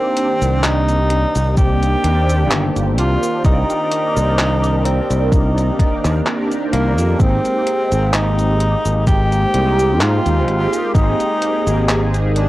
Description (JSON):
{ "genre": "vaporwave", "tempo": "64 BPM", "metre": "4/4", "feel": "swing 54% on 16ths", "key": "C minor", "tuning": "A4 = 439 Hz", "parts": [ { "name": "clear tenor saxophone", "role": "melody", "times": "0.0-12.5 s", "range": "Bb3 to G4", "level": "-20 LUFS", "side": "equal", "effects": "tape echo" }, { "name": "mellow synth brass", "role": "accompaniment", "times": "0.0-12.5 s", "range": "Eb3 to D5", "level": "-20 LUFS", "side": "right 1 dB", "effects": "phaser, ensemble chorus, cassette tape, tape echo" }, { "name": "detuned 8-bit digital drum machine", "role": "drums", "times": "0.2-12.5 s", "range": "cabasa, handclaps, hi-hat", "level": "-23 LUFS", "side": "equal", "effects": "overdrive" }, { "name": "modern bright fingered electric bass", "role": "bass", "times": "0.4-12.5 s", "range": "G1 to Ab2", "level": "-17 LUFS", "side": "equal", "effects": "tube saturation" }, { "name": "electronic kick drum", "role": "drums", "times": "1.6-11.2 s", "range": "none", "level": "-15 LUFS", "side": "equal", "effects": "overdrive" } ], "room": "little or no reverb", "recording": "worn, warbling old tape, cassette tape, warbly pitch drift", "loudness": "-14 LUFS", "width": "side -16 dB against mid", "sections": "0.0-12.5 A section", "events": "none", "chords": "0.0 Cm9; 7.2 Abmaj7" }